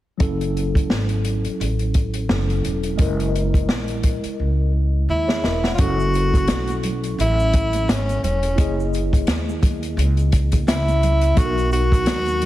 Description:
hip hop, jazz-hop; 86 BPM; 4/4; swing 58% on 16ths; F# dorian; A4 = 438 Hz
mellow tine electric piano; accompaniment; 0.2-12.5 s; F#3 to F#5; -26 LUFS; left 1 dB; medium stereo tremolo
upright bass; bass; 0.2-12.5 s; E1 to D#2; -21 LUFS; equal
open jazz drum kit; drums; 0.2-12.5 s; hi-hat, kick drum, snare drum; -21 LUFS; equal
breathy tenor saxophone; melody; 5.1-12.5 s; C#4 to F#4; -22 LUFS; equal; slapback echo
egg shaker and congas; percussion; 5.8-12.5 s; -34 LUFS; right 6 dB
light reverb, small room ambience; heavily compressed radio sound; -17 LUFS; side -15 dB against mid
0.2-5.8 A section; 5.8-12.5 B section
drum fill 4.4-5.8
0.2 F#m7; 3.0 F#13; 5.8 F#m7; 8.6 F#13; 11.4 Bmaj7

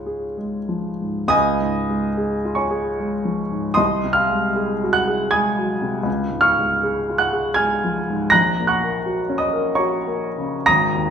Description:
classical, romantic nocturne for solo piano; 61-85 BPM; 3/4; rubato; Db major; A4 = 438 Hz
warm baby grand piano; solo; 0.0-11.1 s; Ab1 to Bb6; -18 LUFS; equal
wet large studio reverb, RT60 1.2 s; minimal, uncompressed stereo recording; -18 LUFS; side -7 dB against mid
0.0-1.3 A section; 1.3-11.1 B section
0.0 Db; 3.8 Ab7/C; 6.1 Db; 8.3 Gb/Bb

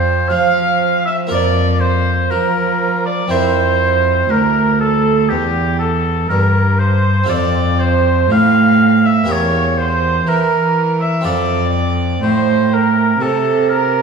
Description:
classical, baroque-style sonata movement with continuo; 60 BPM; 4/4; straight; F major; A4 = 441 Hz
warm oboe; melody; 0.0-14.0 s; G4 to F5; -19 LUFS; left 5 dB
dark violin; second line; 0.0-14.0 s; G4 to F5; -18 LUFS; right 9 dB
harpsichord; accompaniment; 0.0-14.0 s; D2 to Bb4; -21 LUFS; equal
rich cello; bass; 0.0-14.0 s; D2 to F3; -16 LUFS; right 1 dB
wet recital hall reverb, RT60 1.4 s; vinyl crackle, studio ambience; -12 LUFS; side -5 dB against mid
0.0-14.0 A section
0.0 F; 1.3 Bb5/F; 3.3 C7; 7.3 F; 9.3 Edim; 11.2 F

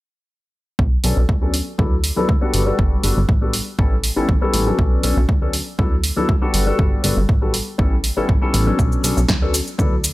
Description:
filtered disco house; 120 BPM; 4/4; straight; B minor; A4 = 440 Hz
plucky analog bass; bass; 0.8-10.1 s; G1 to D2; -20 LUFS; equal; sidechain pumping, low-pass filter
electronic kick drum; drums; 0.8-9.9 s; -18 LUFS; equal; overdrive
dark grand piano; accompaniment; 1.0-9.9 s; F#3 to A4; -21 LUFS; left 2 dB; phaser, sidechain pumping, low-pass filter
punchy analog drum machine; drums; 1.0-10.1 s; hi-hat, shaker, snare drum; -23 LUFS; right 1 dB; overdrive, sidechain pumping on hats, sidechain pumping on perc
little or no reverb; -16 LUFS; side -18 dB against mid
0.8-10.1 A section
filter sweep 0.8-10.1
0.8 Bm7; 1.5 D6; 2.5 Gmaj9; 3.5 A9; 4.8 Bm7; 5.5 D6; 6.5 Gmaj9; 7.5 A9; 8.8 Bm7; 9.5 D6

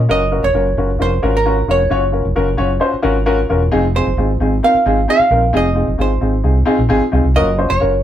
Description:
uptempo 1960s-style soul; 132 BPM; 4/4; straight; A4 = 439 Hz
fingered electric bass; bass; 0.0-8.0 s; E1 to C2; -17 LUFS; equal
archtop guitar, miked and amplified; melody; 0.1-8.0 s; Bb4 to F5; -16 LUFS; right 3 dB
warm upright piano; accompaniment; 0.1-7.9 s; C4 to Db5; -17 LUFS; left 2 dB
moderate studio ambience, RT60 0.5 s; band playing live in one room; -12 LUFS; side -11 dB against mid
0.1-8.0 A section
0.1 Gbmaj7; 3.7 Fm7; 7.4 Gbmaj7

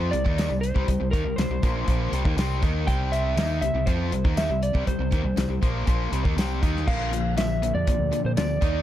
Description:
classic rock; 120 BPM; 4/4; straight; A4 = 438 Hz
electric slide guitar; melody; 0.0-8.8 s; Bb4 to G5; -29 LUFS; right 1 dB; slapback echo
overdriven electric guitar; riff; 0.0-8.8 s; Bb2 to F4; -30 LUFS; left 10 dB
sludgy distorted guitar; riff; 0.0-8.8 s; Bb2 to F4; -32 LUFS; right 12 dB; overdrive
growling fingered electric bass; bass; 0.0-8.8 s; Bb1 to Bb2; -27 LUFS; equal; overdrive
damped 70s drum kit; drums; 0.1-8.7 s; crash cymbal, hi-hat, kick drum, snare drum, tambourine; -26 LUFS; equal
small room reverb; -22 LUFS; side -12 dB against mid
0.0-6.9 A section; 6.9-8.8 B section
0.0 C5; 6.9 Bb

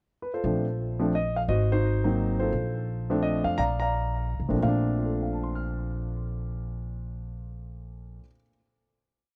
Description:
jazz piano trio; 172 BPM; 3/4; swing 63% on 8ths; Bb major; A4 = 440 Hz
warm concert grand piano; melody; 0.2-8.5 s; Bb2 to F6; -30 LUFS; equal; tape echo
upright bass; bass; 0.4-8.2 s; Ab1 to F2; -32 LUFS; equal
little or no reverb; dry, close 1970s-style studio recording; -28 LUFS; mono
0.0-0.4 pickup bar; 0.4-4.6 A section; 4.6-6.7 final chord
0.4 Bbmaj9; 1.5 Ab9; 2.5 Bbmaj9

